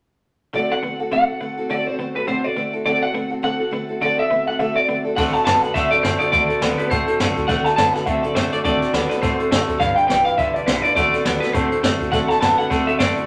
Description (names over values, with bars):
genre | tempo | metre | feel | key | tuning
rockabilly | 207 BPM | 4/4 | swing 58% on 8ths | D mixolydian | A4 = 441 Hz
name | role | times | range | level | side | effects
picked old ladder-braced acoustic guitar | accompaniment | 0.5-13.3 s | D3 to B4 | -26 LUFS | equal | none
twangy electric guitar | riff | 0.5-13.3 s | G2 to C4 | -28 LUFS | equal | none
electric guitar through a small old amp | melody | 0.6-13.3 s | B4 to A5 | -22 LUFS | equal | vibrato effect
upright bass | bass | 5.2-13.2 s | G1 to A2 | -33 LUFS | equal | none
jazz brush drum kit | drums | 5.2-13.2 s | crash cymbal, hi-hat, kick drum, snare drum | -26 LUFS | equal | none
room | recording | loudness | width
moderate large studio reverb, RT60 1.0 s | none | -19 LUFS | mono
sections
0.5-5.2 A section; 5.2-13.3 B section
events
none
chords
0.5 D7; 9.8 G7; 11.0 D7